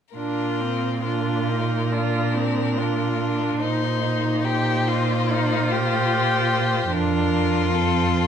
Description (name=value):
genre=classical, slow romantic movement for string quartet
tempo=69-75 BPM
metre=4/4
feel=rubato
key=Bb major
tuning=A4 = 439 Hz
part: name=rich violin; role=melody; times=0.1-8.3 s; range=A4 to C5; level=-28 LUFS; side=left 8 dB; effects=none
part: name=rich violin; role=second line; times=0.2-8.3 s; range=D4 to G4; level=-25 LUFS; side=left 4 dB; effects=none
part: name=rich viola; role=accompaniment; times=0.2-8.3 s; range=C4 to F4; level=-26 LUFS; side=right 2 dB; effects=none
part: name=rich cello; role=bass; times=0.2-8.3 s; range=F2 to Bb2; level=-24 LUFS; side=right 3 dB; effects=none
room=moderate recital hall reverb, RT60 1.6 s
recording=minimal, uncompressed stereo recording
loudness=-20 LUFS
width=side -8 dB against mid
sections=0.2-8.3 A section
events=none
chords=0.2 Bb; 3.6 F5/Bb; 6.9 Bb/F